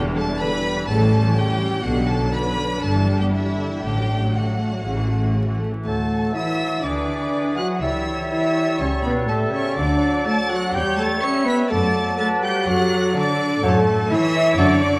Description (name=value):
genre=quick classical-period movement for symphony orchestra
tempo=124 BPM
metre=4/4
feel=rubato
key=D major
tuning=A4 = 435 Hz
part: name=rich chamber viola section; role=accompaniment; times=0.0-15.0 s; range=C#3 to E5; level=-31 LUFS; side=equal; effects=none
part: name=mellow French horn section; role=sustained chords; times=0.0-15.0 s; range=F#3 to C#5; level=-29 LUFS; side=equal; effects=none
part: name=rich symphonic cello section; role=bass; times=0.0-15.0 s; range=E2 to C#4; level=-28 LUFS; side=equal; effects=none
part: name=warm chamber double bass section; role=bass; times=0.0-15.0 s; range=E1 to F#2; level=-27 LUFS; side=equal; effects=none
part: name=rich chamber violin section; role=melody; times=0.2-15.0 s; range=E5 to C#7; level=-31 LUFS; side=equal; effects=none
part: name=rich chamber violin section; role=second line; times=0.2-15.0 s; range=E4 to C#6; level=-32 LUFS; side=equal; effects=none
part: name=flute section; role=second line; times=5.8-15.0 s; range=A4 to C#6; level=-30 LUFS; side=equal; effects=none
part: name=mellow clarinet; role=second line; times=5.8-15.0 s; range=A3 to C#5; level=-32 LUFS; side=equal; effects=none
part: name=clear oboe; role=second line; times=5.9-14.7 s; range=G#4 to D5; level=-32 LUFS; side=equal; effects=none
part: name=warm bassoon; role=accompaniment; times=5.9-14.7 s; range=E3 to G3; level=-30 LUFS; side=equal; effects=none
room=wet recital hall reverb, RT60 1.6 s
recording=vinyl crackle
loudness=-21 LUFS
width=mono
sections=0.0-5.9 A section; 5.9-15.0 B section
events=none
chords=0.0 Em7; 0.9 A7; 1.8 Bm; 2.8 Em7/G; 3.8 D/A; 4.8 A; 5.9 D; 6.8 E7/D; 7.8 A7/C#; 9.8 D; 10.7 C#dim/E; 11.7 D/F#; 13.6 F#m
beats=0.40 0.88 1.35 | 1.83 2.32 2.81 3.31 | 3.82 4.33 4.85 5.36 | 5.86 6.35 6.84 7.33 | 7.82 8.31 8.80 9.28 | 9.77 10.26 10.74 11.22 | 11.70 12.19 12.67 13.15 | 13.63 14.10 14.58